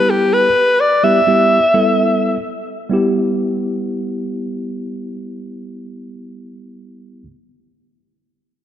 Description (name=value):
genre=pop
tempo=free time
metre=none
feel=none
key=E minor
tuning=A4 = 440 Hz
part: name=clear alto saxophone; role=melody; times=0.0-2.4 s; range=G4 to E5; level=-13 LUFS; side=equal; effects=digital delay
part: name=mellow tine electric piano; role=accompaniment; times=0.0-7.3 s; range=G3 to A4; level=-19 LUFS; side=equal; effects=medium stereo tremolo
room=moderate lush hall reverb, RT60 2.6 s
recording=dark, warm production, low-pass filter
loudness=-13 LUFS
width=side -10 dB against mid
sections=0.0-2.9 A section; 2.9-6.7 B section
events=filter sweep 0.0-2.9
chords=0.0 Em